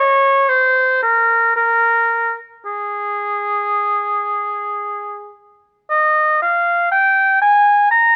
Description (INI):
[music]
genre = classical, baroque-style fantasia for unaccompanied oboe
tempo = 54-61 BPM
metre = 4/4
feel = rubato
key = Ab major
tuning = A4 = 436 Hz
[part]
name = warm oboe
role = solo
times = 0.0-8.2 s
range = Ab4 to Bb5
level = -16 LUFS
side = equal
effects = none
[sound]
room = light reverb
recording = none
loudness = -16 LUFS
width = mono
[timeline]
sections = 0.0-5.9 A section; 5.9-8.2 B section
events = none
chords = none